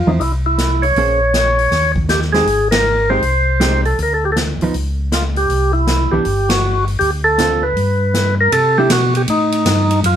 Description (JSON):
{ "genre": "soul jazz organ trio", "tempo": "159 BPM", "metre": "4/4", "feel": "swing 65% on 8ths", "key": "unclear", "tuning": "A4 = 440 Hz", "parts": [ { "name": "percussive tonewheel organ", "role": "melody", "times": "0.0-10.2 s", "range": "Eb4 to Db5", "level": "-15 LUFS", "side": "right 1 dB", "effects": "slow rotary speaker" }, { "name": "mellow tonewheel organ", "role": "bass", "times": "0.0-10.2 s", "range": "G1 to C3", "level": "-18 LUFS", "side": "left 1 dB", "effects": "overdrive, chorus vibrato, slow rotary speaker" }, { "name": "hollow-body jazz guitar", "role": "accompaniment", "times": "0.1-8.9 s", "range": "D3 to C5", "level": "-18 LUFS", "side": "right 3 dB", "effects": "none" }, { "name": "swinging big-band drum kit", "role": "drums", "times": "0.2-10.2 s", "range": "hi-hat, kick drum, ride cymbal, snare drum", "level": "-22 LUFS", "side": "equal", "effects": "none" } ], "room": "moderate studio reverb, RT60 0.5 s", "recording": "band playing live in one room", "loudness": "-13 LUFS", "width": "side -9 dB against mid", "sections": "0.0-8.5 A section; 8.5-10.2 B section", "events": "band accent 2.7, 6.4", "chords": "0.0 Fmaj7; 1.0 Bbm9; 1.7 Ebadd11; 2.5 Abmaj7; 4.0 Dm; 4.7 Db; 5.5 C; 7.0 Dm7; 7.8 G; 8.5 C5", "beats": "0.20 0.58 | 0.96 1.34 1.72 2.09 | 2.47 2.85 3.23 3.61 | 3.98 4.36 4.74 5.12 | 5.50 5.88 6.25 6.63 | 7.01 7.39 7.77 8.15 | 8.53 8.90 9.28 9.66 | 10.04" }